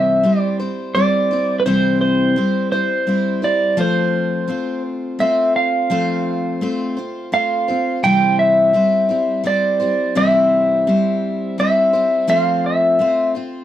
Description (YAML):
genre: country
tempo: 85 BPM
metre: 3/4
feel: straight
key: unclear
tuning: A4 = 439 Hz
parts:
  - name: pedal steel guitar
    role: melody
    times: 0.0-13.3 s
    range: B4 to G5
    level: -16 LUFS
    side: equal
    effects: none
  - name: picked steel-string acoustic guitar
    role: accompaniment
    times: 0.0-13.6 s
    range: C3 to C5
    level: -19 LUFS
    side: equal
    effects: none
room: moderate studio ambience, RT60 0.5 s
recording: none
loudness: -15 LUFS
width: side -11 dB against mid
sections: 0.0-13.6 A section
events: none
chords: 0.0 C; 3.8 F; 8.0 C; 12.3 F